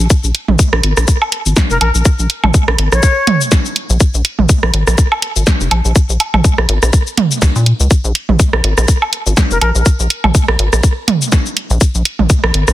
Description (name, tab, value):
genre	minimal techno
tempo	123 BPM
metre	4/4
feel	swing 56% on 16ths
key	Bb minor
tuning	A4 = 440 Hz
part	rubbery square bass	bass	0.0-12.7 s	F1 to Bb2	-13 LUFS	equal	sidechain pumping
part	punchy analog drum machine	drums	0.0-12.7 s	hi-hat, shaker, snare drum	-18 LUFS	left 1 dB	none
part	electronic kick drum	drums	0.1-12.4 s	none	-10 LUFS	equal	none
part	organic electronic drum kit	percussion	0.5-12.7 s	rim click, toms, woodblock	-16 LUFS	right 4 dB	soft clipping on snare, digital delay
part	breathy bright concert flute	melody	1.7-3.4, 9.5-9.7 s	Bb4 to Db5	-18 LUFS	left 2 dB	digital delay
room	digital ambience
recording	dense, heavily limited modern master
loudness	-10 LUFS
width	side -14 dB against mid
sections	0.0-12.7 A section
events	none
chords	0.0 Bb5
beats	| 0.10 0.59 1.08 1.57 | 2.05 2.54 3.03 3.52 | 4.00 4.49 4.98 5.47 | 5.96 6.44 6.93 7.42 | 7.91 8.39 8.88 9.37 | 9.86 10.35 10.83 11.32 | 11.81 12.30